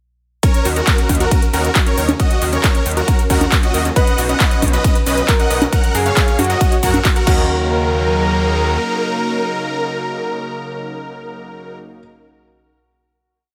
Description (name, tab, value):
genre	uplifting trance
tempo	136 BPM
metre	4/4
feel	straight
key	Eb minor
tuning	A4 = 439 Hz
part	supersaw chords	melody	0.4-11.8 s	Gb4 to F#5	-23 LUFS	equal	sidechain pumping, delay
part	supersaw pad	sustained chords	0.4-11.8 s	Db3 to Gb4	-29 LUFS	equal	phaser, sidechain pumping
part	unison pluck	arpeggios	0.4-7.7 s	Db4 to Gb5	-27 LUFS	equal	sidechain pumping, delay
part	big-room dance drum kit	drums	0.4-7.4 s	congas, crash cymbal, handclaps, hi-hat, ride cymbal, shaker	-23 LUFS	equal	none
part	electronic kick drum	drums	0.4-7.4 s	none	-17 LUFS	equal	none
part	gritty driven synth bass	bass	0.7-8.8 s	B1 to Gb2	-21 LUFS	equal	sidechain pumping
part	warm grand piano	second line	4.0-12.0 s	Gb4 to B4	-26 LUFS	equal	vintage 12-bit sampler grit, dub echo
room	light reverb, digital ambience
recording	none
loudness	-16 LUFS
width	mono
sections	0.4-7.5 drop; 7.5-11.0 final hit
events	drop 0.4-7.5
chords	0.4 Ebm7; 4.0 Badd9; 5.7 Gb; 7.3 Ebm7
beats	| 0.43 0.87 1.31 1.76 | 2.20 2.64 3.08 3.52 | 3.96 4.40 4.84 5.29 | 5.73 6.17 6.61 7.05 | 7.49 7.93 8.37 8.81 | 9.26 9.70 10.14 10.58